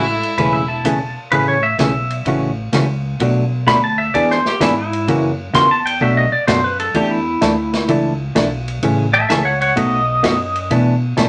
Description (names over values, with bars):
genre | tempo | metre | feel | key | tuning
country, western swing | 128 BPM | 4/4 | swing 68% on 8ths | A major | A4 = 440 Hz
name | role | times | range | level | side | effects
clear fiddle | melody | 0.0-0.8 s | E4 | -24 LUFS | equal | none
hollow-body jazz guitar | second line | 0.0-0.8 s | G#3 | -34 LUFS | equal | none
pedal steel guitar | second line | 0.0-10.7 s | E4 to C6 | -19 LUFS | equal | none
hollow-body jazz guitar | accompaniment | 0.0-11.3 s | B2 to A4 | -20 LUFS | equal | none
upright bass | bass | 0.0-11.3 s | E1 to B2 | -24 LUFS | equal | none
vintage drum kit | drums | 0.2-11.3 s | hi-hat, kick drum, ride cymbal, snare drum | -27 LUFS | equal | none
room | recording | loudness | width
wet studio ambience, RT60 0.5 s | none | -17 LUFS | mono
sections
0.0-1.3 A section; 1.3-11.3 B section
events
pedal steel guitar solo 1.3-11.3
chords
0.0 Amaj7; 2.3 F#m7/A; 3.2 Bm7; 4.1 E7; 5.1 F#7; 6.0 Bm7; 7.0 E7sus4; 8.8 Amaj7; 9.8 B7; 10.7 E7sus4/B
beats
0.38 0.85 | 1.32 1.79 2.26 2.73 | 3.20 3.67 4.13 4.60 | 5.07 5.54 6.01 6.48 | 6.95 7.42 7.89 8.36 | 8.83 9.30 9.77 10.24 | 10.71 11.17